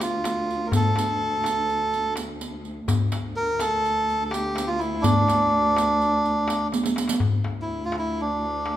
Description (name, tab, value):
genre	Turkish makam ensemble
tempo	249 BPM (eighths)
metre	9/8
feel	straight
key	D makam nihavent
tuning	A4 = 439 Hz
part	melodica	melody	0.0-8.8 s	D4 to Bb4	-23 LUFS	right 1 dB	none
part	rich symphonic cello section	drone	0.0-8.8 s	D2	-30 LUFS	equal	none
part	darbuka	percussion	0.0-8.8 s	none	-26 LUFS	left 3 dB	none
part	riq	percussion	0.0-7.2 s	none	-30 LUFS	right 4 dB	none
room	moderate recital hall reverb, RT60 1.4 s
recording	minimal, uncompressed stereo recording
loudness	-21 LUFS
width	side -12 dB against mid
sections	0.0-7.2 A section; 7.2-8.8 B section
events	drum fill 6.7-7.2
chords	none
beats	0.00 0.24 0.48 | 0.72 0.96 1.20 1.44 1.68 1.92 2.16 2.40 2.64 | 2.88 3.12 3.36 3.60 3.84 4.08 4.33 4.57 4.81 | 5.05 5.29 5.53 5.77 6.01 6.25 6.49 6.73 6.97 | 7.21 7.46 7.70 7.94 8.18 8.42 8.66